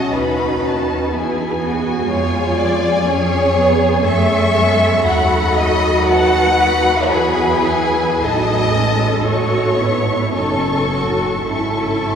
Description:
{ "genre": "classical, slow romantic movement for string orchestra", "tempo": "50-63 BPM", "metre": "3/4", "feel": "rubato", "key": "unclear", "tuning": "A4 = 440 Hz", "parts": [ { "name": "warm studio violin section", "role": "melody", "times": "0.0-12.2 s", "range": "G#5 to C#6", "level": "-23 LUFS", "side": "left 4 dB", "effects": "none" }, { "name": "rich studio violin section", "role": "second line", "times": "0.0-12.2 s", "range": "G#4 to F#5", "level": "-18 LUFS", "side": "left 1 dB", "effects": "none" }, { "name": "warm studio viola section", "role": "accompaniment", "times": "0.0-12.2 s", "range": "E3 to B4", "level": "-20 LUFS", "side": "equal", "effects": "none" }, { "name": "rich studio cello section", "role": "bass", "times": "0.0-12.2 s", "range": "C#4 to A4", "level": "-23 LUFS", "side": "right 1 dB", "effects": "none" }, { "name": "warm studio double bass section", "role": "bass", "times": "0.0-12.2 s", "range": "F#1 to F#2", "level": "-21 LUFS", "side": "right 2 dB", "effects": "none" } ], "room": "wet cathedral reverb, RT60 5.4 s", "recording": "heard from further back in the room", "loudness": "-14 LUFS", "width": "side -7 dB against mid", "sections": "0.0-12.2 A section", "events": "none", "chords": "0.0 B7; 1.1 E; 2.1 C#7/E#; 4.0 F#m; 5.1 B7/D#; 7.1 E; 8.2 Amaj7; 10.4 D#m7b5/F#; 11.5 C#m/G#", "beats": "0.14 1.13 | 2.09 3.06 4.04 | 5.05 6.07 7.09 | 8.23 9.28 10.35 | 11.49" }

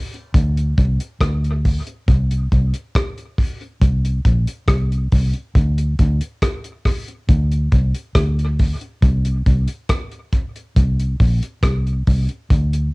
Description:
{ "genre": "dub reggae", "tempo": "69 BPM", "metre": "4/4", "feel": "straight", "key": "unclear", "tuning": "A4 = 440 Hz", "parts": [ { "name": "damped 70s drum kit", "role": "drums", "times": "0.1-12.9 s", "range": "hi-hat, kick drum, rim click", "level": "-18 LUFS", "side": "equal", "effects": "cassette tape" }, { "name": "vintage muted fingered electric bass", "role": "bass", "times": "0.3-12.9 s", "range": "Bb1 to D2", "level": "-17 LUFS", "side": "equal", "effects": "none" } ], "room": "little or no reverb", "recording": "home recording on cassette", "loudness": "-16 LUFS", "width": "side -28 dB against mid", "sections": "0.0-12.9 A section", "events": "none", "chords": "none", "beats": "0.34 1.21 | 2.08 2.95 3.82 4.69 | 5.55 6.42 7.29 8.16 | 9.03 9.89 10.76 11.63 | 12.50" }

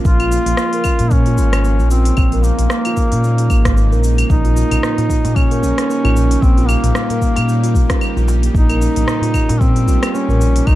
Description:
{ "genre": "organic downtempo", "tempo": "113 BPM", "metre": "4/4", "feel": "swing 57% on 16ths", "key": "unclear", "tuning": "A4 = 440 Hz", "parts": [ { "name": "bowed-like drone", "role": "sustained chords", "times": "0.0-10.8 s", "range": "Db3 to G4", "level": "-26 LUFS", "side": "left 1 dB", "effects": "built-in reverb, sidechain pumping" }, { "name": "steel tongue drum", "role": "arpeggios", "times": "0.0-10.8 s", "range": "Bb3 to Bb4", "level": "-23 LUFS", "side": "right 4 dB", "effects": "vintage 12-bit sampler grit, tape echo" }, { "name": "smooth gliding synth bass", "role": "bass", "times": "0.0-10.8 s", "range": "Ab1 to Bb2", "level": "-15 LUFS", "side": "equal", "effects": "sidechain pumping" }, { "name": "breathy duduk", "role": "melody", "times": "0.1-10.8 s", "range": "Bb3 to F4", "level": "-20 LUFS", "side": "equal", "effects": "tape echo" }, { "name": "electronic kick drum", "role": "drums", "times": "0.1-10.8 s", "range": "none", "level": "-15 LUFS", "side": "equal", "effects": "none" }, { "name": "organic electronic drum kit", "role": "drums", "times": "0.1-10.8 s", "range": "claves, hi-hat, rim click, shaker", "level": "-24 LUFS", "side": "equal", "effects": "none" }, { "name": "darbuka", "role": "percussion", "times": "4.6-10.4 s", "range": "none", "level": "-24 LUFS", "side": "right 1 dB", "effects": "none" } ], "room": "little or no reverb", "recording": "dark, warm production", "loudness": "-12 LUFS", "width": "side -15 dB against mid", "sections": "0.0-10.8 A section", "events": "none", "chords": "0.0 Bbm7; 4.3 Eb7/Bb", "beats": "| 0.05 0.58 1.11 1.65 | 2.18 2.71 3.24 3.77 | 4.30 4.83 5.36 5.89 | 6.42 6.96 7.49 8.02 | 8.55 9.08 9.61 10.14 | 10.67" }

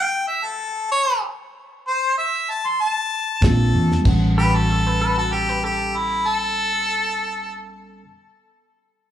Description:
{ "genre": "straight-eighth soul blues", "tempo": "95 BPM", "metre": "4/4", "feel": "straight", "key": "A mixolydian", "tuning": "A4 = 440 Hz", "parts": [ { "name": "warm harmonica", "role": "melody", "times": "0.0-7.7 s", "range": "E4 to C6", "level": "-21 LUFS", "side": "left 1 dB", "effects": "slapback echo" }, { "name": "mellow reed electric piano", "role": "accompaniment", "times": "3.4-8.1 s", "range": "G3 to F#5", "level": "-26 LUFS", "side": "right 2 dB", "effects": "slapback echo" }, { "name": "vintage muted fingered electric bass", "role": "bass", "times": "3.4-8.0 s", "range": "A1 to E2", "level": "-20 LUFS", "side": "equal", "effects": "none" }, { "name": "damped 70s drum kit", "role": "drums", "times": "3.4-4.2 s", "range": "crash cymbal, hi-hat, kick drum, snare drum", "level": "-21 LUFS", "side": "equal", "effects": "none" }, { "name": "clean electric guitar", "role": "second line", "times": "4.4-8.0 s", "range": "F#4 to B4", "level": "-27 LUFS", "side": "right 1 dB", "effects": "slapback echo" } ], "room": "light reverb, small room ambience", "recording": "live gig heard through the venue's PA, club reverb", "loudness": "-18 LUFS", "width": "side -10 dB against mid", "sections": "0.0-4.1 A section; 4.1-6.6 B section", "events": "stop 0.0-3.4", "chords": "0.0 N.C.; 3.4 Bbadd9; 4.1 A13", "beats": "0.26 0.89 | 1.53 2.16 2.79 3.42 | 4.05 4.68 5.32 5.95" }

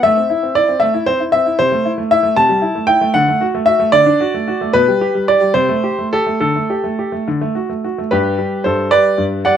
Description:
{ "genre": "classical-period piano sonatina", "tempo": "68-79 BPM (dotted quarters)", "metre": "6/8", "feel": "rubato", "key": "G major", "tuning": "A4 = 440 Hz", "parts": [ { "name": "clear grand piano", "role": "solo", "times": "0.0-9.6 s", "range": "G2 to A5", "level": "-13 LUFS", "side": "equal", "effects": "none" } ], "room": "light reverb", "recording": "worn, warbling old tape, cassette tape, warbly pitch drift", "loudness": "-13 LUFS", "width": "side -9 dB against mid", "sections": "0.0-8.1 A section; 8.1-9.6 B section", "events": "none", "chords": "0.0 Am; 1.6 Am7/C; 3.1 D; 4.7 G/B; 5.5 Am7/C; 6.4 Dsus4; 7.3 D; 8.1 G", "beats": "| 0.03 0.82 | 1.59 2.37 | 3.14 3.92 | 4.72 5.53 | 6.39 7.26 | 8.11 8.90" }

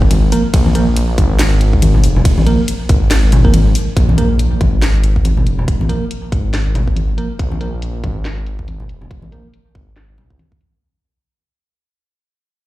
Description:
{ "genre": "deep dubstep", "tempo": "140 BPM", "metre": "4/4", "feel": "swing 58% on 16ths, half-time", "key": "unclear", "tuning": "A4 = 438 Hz", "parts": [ { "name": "dark detuned saw bass", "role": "bass", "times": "0.0-10.4 s", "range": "F1 to Db2", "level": "-14 LUFS", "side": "equal", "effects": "none" }, { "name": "electronic kick drum", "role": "drums", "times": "0.0-10.6 s", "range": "none", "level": "-14 LUFS", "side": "equal", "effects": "studio reverb" }, { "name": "garage drum kit", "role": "drums", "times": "0.1-10.7 s", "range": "hi-hat, ride cymbal, snare drum", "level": "-23 LUFS", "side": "equal", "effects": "low-pass filter on hats, studio reverb, low-pass filter on snare, low-pass filter on cymbals" }, { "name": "congas", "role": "percussion", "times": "0.1-10.5 s", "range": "none", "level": "-20 LUFS", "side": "left 2 dB", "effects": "dub echo" }, { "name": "bell-like tine electric piano", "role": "stabs", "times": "0.3-9.5 s", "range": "F3 to Bb4", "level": "-20 LUFS", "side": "right 2 dB", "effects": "low-pass filter, dub echo" }, { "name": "impact", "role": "sound effects", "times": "4.0-5.7 s", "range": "none", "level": "-21 LUFS", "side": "equal", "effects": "none" } ], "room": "little or no reverb", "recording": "played on a big sound system in a bare room, large studio reverb", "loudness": "-12 LUFS", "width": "side -16 dB against mid", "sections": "0.0-4.0 A section; 4.0-10.8 B section", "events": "drop 0.0-4.0; break 3.5-4.0; fade-out 4.0-10.8; impact 4.0-5.7; filter sweep on tine electric piano 4.0-10.8", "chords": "0.0 Bb5", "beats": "0.11 | 0.54 0.96 1.39 1.82 | 2.25 2.68 3.11 3.54 | 3.96 4.39 4.82 5.25 | 5.68 6.11 6.54 6.96 | 7.39 7.82 8.25 8.68 | 9.11 9.54 9.96 10.39" }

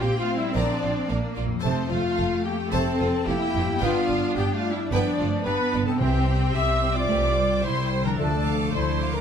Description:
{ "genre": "cinematic", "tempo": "110 BPM", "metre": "4/4", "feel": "straight", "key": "F major", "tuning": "A4 = 439 Hz", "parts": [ { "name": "clear symphonic violin section", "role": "melody", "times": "0.0-9.2 s", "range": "C5 to E6", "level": "-36 LUFS", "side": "left 3 dB", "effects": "none" }, { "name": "clear clarinet", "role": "second line", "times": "0.0-9.2 s", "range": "F3 to G4", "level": "-32 LUFS", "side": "left 1 dB", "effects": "none" }, { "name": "mellow silver concert flute", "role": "second line", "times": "0.0-9.2 s", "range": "C5 to E6", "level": "-34 LUFS", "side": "left 1 dB", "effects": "none" }, { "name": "rich chamber violin section", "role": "second line", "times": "0.0-9.2 s", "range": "F4 to D6", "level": "-34 LUFS", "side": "left 2 dB", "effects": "none" }, { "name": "rich symphonic viola section", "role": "accompaniment", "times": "0.0-9.2 s", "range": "C4 to E5", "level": "-32 LUFS", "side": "right 2 dB", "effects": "none" }, { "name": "mellow French horn section", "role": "sustained chords", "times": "0.0-9.2 s", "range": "C4 to E5", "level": "-28 LUFS", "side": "left 4 dB", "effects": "none" }, { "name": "concert harp", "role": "arpeggios", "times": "0.0-9.2 s", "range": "F2 to E5", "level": "-32 LUFS", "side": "left 13 dB", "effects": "none" }, { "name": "rich symphonic cello section", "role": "bass", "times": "0.0-9.2 s", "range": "F3 to E4", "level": "-30 LUFS", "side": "right 4 dB", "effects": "none" }, { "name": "rich symphonic double bass section", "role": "bass", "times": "0.0-9.2 s", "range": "F1 to D2", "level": "-27 LUFS", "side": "right 3 dB", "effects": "none" }, { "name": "warm trombone section", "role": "sustained chords", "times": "0.5-8.4 s", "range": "C3 to C4", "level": "-35 LUFS", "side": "right 4 dB", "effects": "none" }, { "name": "timpani", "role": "percussion", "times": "6.0-6.8 s", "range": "C3", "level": "-29 LUFS", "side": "right 1 dB", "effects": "none" } ], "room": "moderate recital hall reverb, RT60 1.5 s", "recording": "close, detailed microphones", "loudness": "-21 LUFS", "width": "side -8 dB against mid", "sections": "0.0-9.2 A section", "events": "none", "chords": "0.0 Bb; 1.6 F; 3.8 G7; 6.0 C; 8.2 Dm", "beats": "0.00 0.55 1.09 | 1.64 2.18 2.73 3.27 | 3.82 4.37 4.91 5.46 | 6.00 6.54 7.09 7.63 | 8.18 8.73" }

